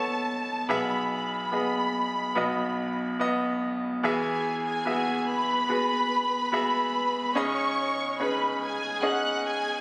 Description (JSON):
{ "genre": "pop", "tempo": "72 BPM", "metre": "4/4", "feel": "straight", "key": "E major", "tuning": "A4 = 439 Hz", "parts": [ { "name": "warm studio violin section", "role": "melody", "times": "0.0-9.8 s", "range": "G#4 to F#6", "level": "-31 LUFS", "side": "equal", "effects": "tape echo" }, { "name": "clear baby grand piano", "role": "accompaniment", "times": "0.0-9.8 s", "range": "A1 to E5", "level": "-30 LUFS", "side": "equal", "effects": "none" } ], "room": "light reverb", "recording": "recorded on a phone in the room, club reverb", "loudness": "-27 LUFS", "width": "mono", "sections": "0.0-4.0 A section; 4.0-9.8 B section", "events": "none", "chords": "0.0 Asus2; 0.7 E/B; 2.4 B; 4.0 Eadd9; 7.4 C#sus2" }